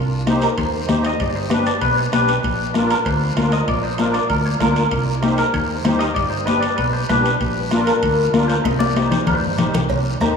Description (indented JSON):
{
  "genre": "latin, cumbia",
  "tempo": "193 BPM",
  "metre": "4/4",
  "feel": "straight",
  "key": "C minor",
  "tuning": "A4 = 439 Hz",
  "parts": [
    { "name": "hollow-body short-scale fingered electric bass", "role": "bass", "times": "0.0-10.4 s", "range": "G1 to Eb2", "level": "-22 LUFS", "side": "equal", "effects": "none" },
    { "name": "musette accordion", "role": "accompaniment", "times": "0.3-10.4 s", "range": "D4 to C5", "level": "-23 LUFS", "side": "equal", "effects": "none" },
    { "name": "bombo", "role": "percussion", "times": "0.3-10.4 s", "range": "none", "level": "-31 LUFS", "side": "equal", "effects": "none" },
    { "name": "congas", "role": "percussion", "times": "0.3-10.4 s", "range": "none", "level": "-22 LUFS", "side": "left 4 dB", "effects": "none" },
    { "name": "guiro", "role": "percussion", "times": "0.3-10.4 s", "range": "none", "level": "-34 LUFS", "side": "left 4 dB", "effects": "none" },
    { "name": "timbales and cowbell", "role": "percussion", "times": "0.3-10.4 s", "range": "none", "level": "-32 LUFS", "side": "right 6 dB", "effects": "none" },
    { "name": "clean electric guitar", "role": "melody", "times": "0.4-10.4 s", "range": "Bb4 to Eb5", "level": "-21 LUFS", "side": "left 1 dB", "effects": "spring reverb" }
  ],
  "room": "wet cathedral reverb, RT60 6.2 s",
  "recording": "in a vast, echoing space, small room reverb",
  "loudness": "-16 LUFS",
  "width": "side -6 dB against mid",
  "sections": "0.0-9.9 A section",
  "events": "drum fill 8.7-9.9",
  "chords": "0.0 Cm; 1.2 G; 2.4 Bb; 4.9 Cm; 6.2 G; 7.4 Bb; 8.7 Cm",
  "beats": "0.26 0.57 0.88 | 1.20 1.50 1.81 2.13 | 2.44 2.75 3.06 3.37 | 3.68 3.99 4.30 4.61 | 4.92 5.23 5.54 5.85 | 6.16 6.47 6.79 7.10 | 7.41 7.72 8.03 8.34 | 8.65 8.96 9.27 9.59 | 9.90 10.21"
}